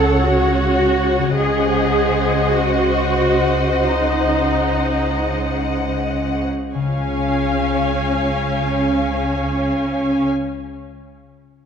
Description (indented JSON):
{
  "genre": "classical, slow romantic movement for symphony orchestra",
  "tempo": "36-53 BPM (dotted quarters)",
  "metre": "12/8",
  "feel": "rubato",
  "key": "Db major",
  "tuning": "A4 = 439 Hz",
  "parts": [
    { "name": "warm studio violin section", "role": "melody", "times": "0.0-10.3 s", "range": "Gb5 to Ab5", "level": "-27 LUFS", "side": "left 3 dB", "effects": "none" },
    { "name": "warm studio violin section", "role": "second line", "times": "0.0-10.3 s", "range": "C5 to F5", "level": "-23 LUFS", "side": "left 2 dB", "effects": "none" },
    { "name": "rich studio viola section", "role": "accompaniment", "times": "0.0-10.3 s", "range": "Db4 to A4", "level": "-20 LUFS", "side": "right 1 dB", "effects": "none" },
    { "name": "concert harp", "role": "arpeggios", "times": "0.0-10.6 s", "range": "Db3 to F5", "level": "-28 LUFS", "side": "left 7 dB", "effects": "none" },
    { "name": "rich studio cello section", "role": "bass", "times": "0.0-10.3 s", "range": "Db3", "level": "-23 LUFS", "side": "right 2 dB", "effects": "none" },
    { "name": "warm studio double bass section", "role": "bass", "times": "0.0-10.3 s", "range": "Db2", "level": "-24 LUFS", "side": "right 1 dB", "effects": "none" }
  ],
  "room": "wet concert hall reverb, RT60 2.4 s",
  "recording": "minimal, uncompressed stereo recording",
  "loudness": "-16 LUFS",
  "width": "side -7 dB against mid",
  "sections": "0.0-6.7 A section; 6.7-11.7 B section",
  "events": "slowing down 0.0-6.7",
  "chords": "0.0 Gbm/Db; 1.4 Ab7/Db; 6.7 Db",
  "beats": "0.22 | 1.36 2.55 3.84 5.21 | 6.74 8.15 9.55"
}